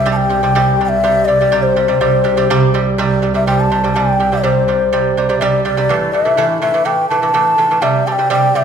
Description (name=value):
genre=mongolian traditional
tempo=124 BPM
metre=4/4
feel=straight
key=C gong mode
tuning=A4 = 440 Hz
part: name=mellow hollow bansuri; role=melody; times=0.0-8.6 s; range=C5 to A5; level=-14 LUFS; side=left 3 dB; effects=none
part: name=lute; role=arpeggios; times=0.0-8.6 s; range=A2 to G3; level=-15 LUFS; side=right 5 dB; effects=none
part: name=rich double bass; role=drone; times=0.0-5.9 s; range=C2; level=-21 LUFS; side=right 1 dB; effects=none
room=wet recital hall reverb, RT60 1.4 s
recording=minimal, uncompressed stereo recording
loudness=-12 LUFS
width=side -7 dB against mid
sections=0.0-5.9 A section; 5.9-8.6 B section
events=none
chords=0.0 C5; 5.9 A5; 7.8 C5